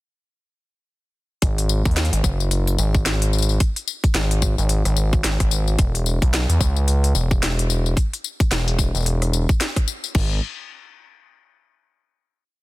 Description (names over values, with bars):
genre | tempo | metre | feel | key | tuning
glitch hop | 110 BPM | 4/4 | swing 59% on 16ths | G# minor | A4 = 441 Hz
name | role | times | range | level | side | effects
gritty driven synth bass | bass | 1.4-10.4 s | E1 to E2 | -19 LUFS | equal | tube saturation
drum and bass drum kit | drums | 1.4-10.3 s | crash cymbal, hi-hat, rim click, snare drum, tambourine | -25 LUFS | left 3 dB | none
electronic kick drum | drums | 1.4-10.3 s | none | -19 LUFS | equal | none
room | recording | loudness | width
little or no reverb | dense, heavily limited modern master | -18 LUFS | side -19 dB against mid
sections
1.4-10.1 drop; 10.1-12.3 final note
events
drop 1.4-10.1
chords
none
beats
| 1.42 1.97 2.51 3.06 | 3.60 4.15 4.69 5.24 | 5.79 6.33 6.88 7.42 | 7.97 8.51 9.06 9.60 | 10.15